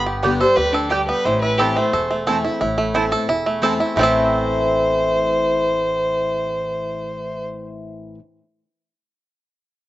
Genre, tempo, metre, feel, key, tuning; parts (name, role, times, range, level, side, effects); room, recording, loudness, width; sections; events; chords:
bluegrass; 177 BPM; 4/4; straight; A minor; A4 = 436 Hz
picked steel-string acoustic guitar; accompaniment; 0.0-8.2 s; E2 to G4; -24 LUFS; left 2 dB; slapback echo
bluegrass banjo; arpeggios; 0.0-8.2 s; E3 to A4; -21 LUFS; right 2 dB; slapback echo
upright bass; bass; 0.0-8.1 s; E1 to D2; -30 LUFS; equal
mandolin; stabs; 0.2-8.2 s; B3 to A5; -25 LUFS; right 4 dB
clear fiddle; melody; 0.4-7.4 s; D4 to C5; -20 LUFS; equal
little or no reverb; recorded outdoors, with no room sound, nothing above 7.8 kHz; -17 LUFS; side -15 dB against mid
0.0-2.6 A section; 2.6-4.0 B section; 4.0-6.7 C section
0.0 G; 1.3 Am